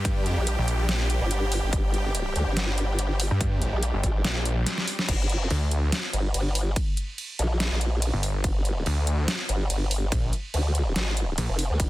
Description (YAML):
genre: heavy wobble dubstep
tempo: 143 BPM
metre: 4/4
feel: swing 54% on 16ths, half-time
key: G phrygian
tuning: A4 = 440 Hz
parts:
  - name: supersaw chords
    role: sustained chords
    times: 0.0-5.1 s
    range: G3 to G4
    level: -33 LUFS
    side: equal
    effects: sidechain pumping
  - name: snarling distorted saw bass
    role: bass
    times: 0.0-11.5 s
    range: G1 to G2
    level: -25 LUFS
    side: equal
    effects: distortion, overdrive
  - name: dubstep drum kit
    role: drums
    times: 0.1-11.9 s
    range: crash cymbal, hi-hat, ride cymbal, snare drum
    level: -30 LUFS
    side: equal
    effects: overdrive
  - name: electronic kick drum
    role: drums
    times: 0.1-11.9 s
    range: none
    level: -26 LUFS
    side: equal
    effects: overdrive
  - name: formant-sweep wobble bass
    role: bass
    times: 0.4-11.9 s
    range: F1 to D2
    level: -25 LUFS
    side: equal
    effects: chorus, overdrive
room: little or no reverb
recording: dense, heavily limited modern master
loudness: -23 LUFS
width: side -17 dB against mid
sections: 0.0-5.1 A section; 5.1-11.9 A section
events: drop 0.0-5.1, 5.1-11.9; drum fill 4.7-5.1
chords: 0.0 G5